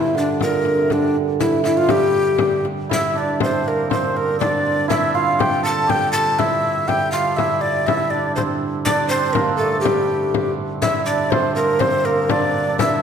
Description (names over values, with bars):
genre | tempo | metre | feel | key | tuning
medieval dance | 121 BPM | 2/4 | straight | G dorian | A4 = 439 Hz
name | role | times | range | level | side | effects
breathy mellow tenor recorder | melody | 0.0-13.0 s | D4 to A5 | -20 LUFS | left 2 dB | none
hammered dulcimer | second line | 0.0-13.0 s | Bb2 to A4 | -21 LUFS | right 5 dB | none
pipe organ, cornet | drone | 0.0-13.0 s | G2 to D3 | -27 LUFS | right 2 dB | none
frame drum | percussion | 0.2-13.0 s | none | -25 LUFS | left 5 dB | none
room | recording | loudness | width
wet concert hall reverb, RT60 1.7 s | minimal, uncompressed stereo recording | -16 LUFS | side -7 dB against mid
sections
0.0-2.9 A section; 2.9-10.8 B section; 10.8-13.0 B section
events
none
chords
none